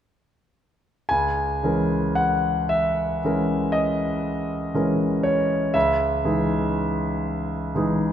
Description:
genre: classical, impressionist solo piano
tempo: 37-40 BPM (dotted quarters)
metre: 9/8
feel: rubato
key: C# minor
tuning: A4 = 440 Hz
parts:
  - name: clear concert grand piano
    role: solo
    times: 1.1-8.1 s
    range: C#2 to G#5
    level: -20 LUFS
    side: equal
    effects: none
room: moderate scoring stage reverb, RT60 1.7 s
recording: none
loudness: -20 LUFS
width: side -9 dB against mid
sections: 1.1-8.1 A section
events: none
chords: 1.1 C#m6; 5.8 Emaj7/C#

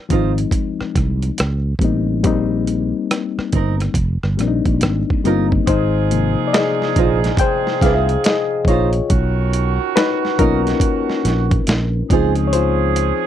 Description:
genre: R&B, neo-soul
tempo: 70 BPM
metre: 4/4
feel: swing 63% on 16ths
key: unclear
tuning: A4 = 440 Hz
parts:
  - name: nylon-string guitar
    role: second line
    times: 0.1-12.3 s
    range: C4 to C5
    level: -21 LUFS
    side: right 13 dB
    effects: none
  - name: reed electric piano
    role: accompaniment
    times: 0.1-13.3 s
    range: C3 to G5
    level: -19 LUFS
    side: left 7 dB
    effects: none
  - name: sustaining fretless electric bass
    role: bass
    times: 0.1-13.1 s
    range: F1 to Db2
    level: -19 LUFS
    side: right 1 dB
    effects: none
  - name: dusty soul sampler-style drum kit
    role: drums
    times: 0.1-13.2 s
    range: hi-hat, kick drum, rim click, snare drum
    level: -19 LUFS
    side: right 1 dB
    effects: overdrive
  - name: warm horn section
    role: stabs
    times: 5.7-13.3 s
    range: D#3 to Ab4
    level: -23 LUFS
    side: right 20 dB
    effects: none
room: little or no reverb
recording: dry, close 1970s-style studio recording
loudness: -15 LUFS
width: side -10 dB against mid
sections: 0.0-5.7 A section; 5.7-13.3 B section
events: reed electric piano solo 5.7-13.3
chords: 0.0 Ab6; 1.4 Am7b5; 2.2 Cm7/Bb; 4.0 F7sus4 (rootless); 5.7 Ab6; 9.1 Bmaj9#11; 12.1 Dbmaj7

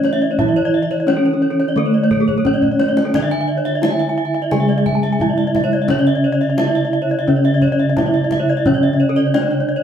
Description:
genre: Balinese gamelan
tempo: 87 BPM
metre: 4/4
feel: straight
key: C# pelog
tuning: A4 = 439 Hz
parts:
  - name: gamelan-type bronze metallophone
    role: melody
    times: 0.0-9.8 s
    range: A3 to G#4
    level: -18 LUFS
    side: equal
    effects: none
  - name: gamelan-type bronze metallophone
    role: accompaniment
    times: 0.0-9.8 s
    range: C#3 to A3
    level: -22 LUFS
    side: right 1 dB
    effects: none
  - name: gamelan-type bronze metallophone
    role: arpeggios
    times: 0.0-9.8 s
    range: G#4 to A5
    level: -22 LUFS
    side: equal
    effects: none
  - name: gamelan-type bossed gongs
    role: bass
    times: 0.0-9.8 s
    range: C#3 to E4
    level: -23 LUFS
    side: right 1 dB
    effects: none
  - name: kendang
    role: percussion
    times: 0.0-9.6 s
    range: none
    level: -26 LUFS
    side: left 2 dB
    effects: none
  - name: gamelan-type bronze metallophone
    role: arpeggios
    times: 0.1-9.8 s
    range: A4 to G#5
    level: -24 LUFS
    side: equal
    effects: none
room: wet studio reverb, RT60 0.7 s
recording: band playing live in one room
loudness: -14 LUFS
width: side -8 dB against mid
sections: 0.0-9.8 A section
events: drum fill 2.3-3.1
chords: none

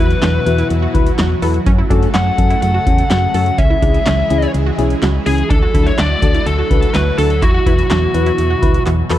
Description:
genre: synth-pop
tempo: 125 BPM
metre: 4/4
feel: straight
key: unclear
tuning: A4 = 438 Hz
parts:
  - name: biting lead guitar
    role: melody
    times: 0.0-8.8 s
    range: F#4 to F#5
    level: -19 LUFS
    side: left 1 dB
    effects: overdrive, ping-pong delay
  - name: tine electric piano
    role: accompaniment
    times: 0.0-9.2 s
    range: C#4 to B4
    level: -22 LUFS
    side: left 5 dB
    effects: lush chorus
  - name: lush unison pad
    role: sustained chords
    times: 0.0-9.2 s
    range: B2 to A4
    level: -22 LUFS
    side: right 1 dB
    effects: chorus
  - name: wide unison pluck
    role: arpeggios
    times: 0.0-9.2 s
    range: C#4 to A4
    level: -26 LUFS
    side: right 4 dB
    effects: ping-pong delay
  - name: solid FM bass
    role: bass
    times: 0.0-9.2 s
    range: B1 to F#2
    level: -17 LUFS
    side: equal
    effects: none
  - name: electro analog drum machine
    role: drums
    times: 0.1-9.2 s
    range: handclaps, hi-hat, kick drum, snare drum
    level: -16 LUFS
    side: equal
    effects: none
room: digital ambience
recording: dark, warm production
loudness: -12 LUFS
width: side -13 dB against mid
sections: 0.0-9.2 A section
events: drum fill 8.9-9.2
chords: 0.0 Esus2; 1.7 F#m; 3.6 C#m; 5.5 Dadd9; 7.4 Esus2

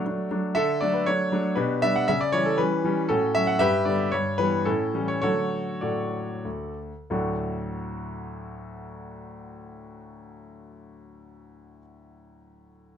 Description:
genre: classical-period piano sonatina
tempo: 91-120 BPM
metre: 3/4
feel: rubato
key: D major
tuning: A4 = 440 Hz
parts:
  - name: warm grand piano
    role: solo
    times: 0.0-13.0 s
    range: D2 to F#5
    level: -24 LUFS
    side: equal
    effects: none
room: little or no reverb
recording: close, detailed microphones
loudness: -23 LUFS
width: side -8 dB against mid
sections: 0.0-7.1 A section; 7.1-11.0 B section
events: slowing down 2.8-7.1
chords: 0.0 D; 1.6 G/B; 2.1 C#dim; 3.1 F#m/A; 3.6 G; 4.1 Em/G; 4.7 A7; 5.2 D

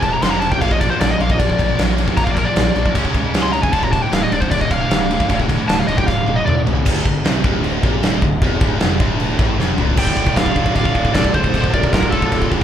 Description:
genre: heavy metal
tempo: 154 BPM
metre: 4/4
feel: straight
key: D minor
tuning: A4 = 440 Hz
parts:
  - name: high-gain lead guitar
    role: melody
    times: 0.0-6.6, 10.0-12.5 s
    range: A4 to C6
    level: -20 LUFS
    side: left 1 dB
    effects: distortion
  - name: high-gain distorted guitar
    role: riff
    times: 0.0-12.6 s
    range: D2 to C#4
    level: -27 LUFS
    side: right 7 dB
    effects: distortion
  - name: high-gain distorted guitar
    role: riff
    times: 0.0-12.6 s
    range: D2 to C#4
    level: -25 LUFS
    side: equal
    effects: distortion
  - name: scooped high-gain guitar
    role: riff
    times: 0.0-12.6 s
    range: D2 to C#4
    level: -27 LUFS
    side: left 8 dB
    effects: distortion
  - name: smooth synth bass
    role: bass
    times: 0.0-12.6 s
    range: D1 to C#2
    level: -24 LUFS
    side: equal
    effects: none
  - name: big rock drum kit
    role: drums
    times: 0.0-12.6 s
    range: china cymbal, crash cymbal, kick drum, snare drum, toms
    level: -17 LUFS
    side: equal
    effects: none
  - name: dark studio string section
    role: sustained chords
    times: 0.6-12.6 s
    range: C#3 to D5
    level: -34 LUFS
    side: left 2 dB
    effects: none
  - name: high-gain lead guitar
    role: second line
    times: 10.0-12.5 s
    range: F4 to D5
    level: -26 LUFS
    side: right 4 dB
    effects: distortion
room: light reverb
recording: band playing live in one room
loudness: -14 LUFS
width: side -10 dB against mid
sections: 0.0-6.9 A section; 6.9-10.0 B section; 10.0-12.6 C section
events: lead electric guitar solo 0.0-6.9; drum fill 6.1-6.9, 9.6-10.0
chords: 0.2 F5; 0.6 Bb; 3.0 C#5; 3.7 Dm

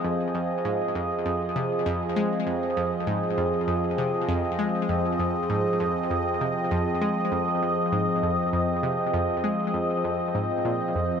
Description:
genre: ambient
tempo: 99 BPM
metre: 4/4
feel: straight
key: F minor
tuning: A4 = 440 Hz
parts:
  - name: sweeping resonant pad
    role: sustained chords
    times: 0.0-11.2 s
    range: F3 to Eb5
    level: -24 LUFS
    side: right 1 dB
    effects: chorus, phaser
  - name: analog pluck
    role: riff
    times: 0.0-11.1 s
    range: F2 to Ab3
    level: -29 LUFS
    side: left 1 dB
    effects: chorus, cassette tape, ping-pong delay
room: wet spring reverb, RT60 2.6 s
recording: echo-heavy mix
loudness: -23 LUFS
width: side -7 dB against mid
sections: 0.0-11.2 A section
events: none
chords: 0.0 Fm7

